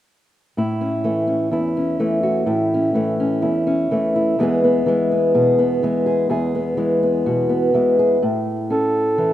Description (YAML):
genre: folk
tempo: 63 BPM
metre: 4/4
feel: straight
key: unclear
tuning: A4 = 439 Hz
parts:
  - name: fingerpicked old ladder-braced acoustic guitar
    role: accompaniment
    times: 0.6-9.3 s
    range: E2 to G#4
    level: -17 LUFS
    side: equal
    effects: none
  - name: breathy flugelhorn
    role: melody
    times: 8.7-9.3 s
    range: A4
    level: -18 LUFS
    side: right 1 dB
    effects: none
room: wet plate reverb, RT60 2.6 s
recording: rough home demo mix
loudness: -16 LUFS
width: side -12 dB against mid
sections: 0.6-8.2 A section; 8.2-9.3 B section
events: none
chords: 0.6 A; 4.4 E; 8.2 A